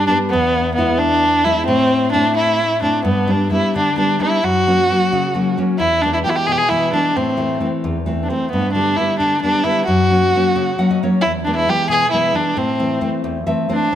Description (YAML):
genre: andean folk, Andean ensemble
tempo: 88 BPM (dotted quarters)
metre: 6/8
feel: straight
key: A dorian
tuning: A4 = 442 Hz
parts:
  - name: warm violin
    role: melody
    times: 0.0-13.9 s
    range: B3 to G#4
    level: -16 LUFS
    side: equal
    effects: none
  - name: nylon-string guitar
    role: accompaniment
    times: 0.0-13.9 s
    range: E2 to F#5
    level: -19 LUFS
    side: left 1 dB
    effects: none
room: moderate concert hall reverb, RT60 1.7 s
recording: none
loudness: -14 LUFS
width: side -10 dB against mid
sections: 0.0-3.1 A section; 3.1-13.9 B section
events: nylon-string guitar fill 10.5-11.2, 13.2-13.9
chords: 0.3 E; 1.7 Am; 3.1 G; 4.4 F#; 5.8 E; 7.2 Am; 8.5 G; 9.9 F#; 11.2 E; 12.6 Am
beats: | 0.32 1.01 | 1.70 2.38 | 3.07 3.75 | 4.43 5.11 | 5.79 6.47 | 7.16 7.83 | 8.51 9.19 | 9.87 10.54 | 11.22 11.89 | 12.57 13.24 | 13.91